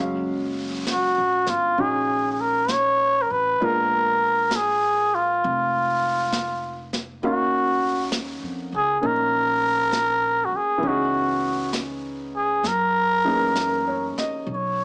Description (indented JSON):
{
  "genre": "jazz ballad",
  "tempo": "66 BPM",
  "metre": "4/4",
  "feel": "swing 66% on 8ths",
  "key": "F# major",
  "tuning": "A4 = 439 Hz",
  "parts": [
    { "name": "clear baby grand piano", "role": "accompaniment", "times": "0.0-14.7 s", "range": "E3 to E#5", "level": "-30 LUFS", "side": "equal", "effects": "none" },
    { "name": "upright bass", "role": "bass", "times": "0.0-14.8 s", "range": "E#1 to F#2", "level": "-39 LUFS", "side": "equal", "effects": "none" },
    { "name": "trumpet with cup mute", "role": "melody", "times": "0.9-14.8 s", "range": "E#4 to C#5", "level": "-23 LUFS", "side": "equal", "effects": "none" },
    { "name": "vintage brush drum kit", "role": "drums", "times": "0.9-14.8 s", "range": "brushed snare drum, hi-hat, snare drum", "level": "-34 LUFS", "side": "equal", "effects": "none" }
  ],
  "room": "moderate studio reverb, RT60 0.5 s",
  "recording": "heavily compressed radio sound, small speaker sound",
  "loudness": "-23 LUFS",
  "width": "mono",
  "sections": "0.0-14.8 A section",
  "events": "none",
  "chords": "0.0 F#maj7; 3.6 A#7b9; 7.2 D#m9; 10.8 C#m7; 12.6 F#13",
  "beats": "0.87 1.78 2.70 | 3.61 4.52 5.43 6.33 | 7.22 8.12 9.02 9.92 | 10.83 11.74 12.65 13.57 | 14.49"
}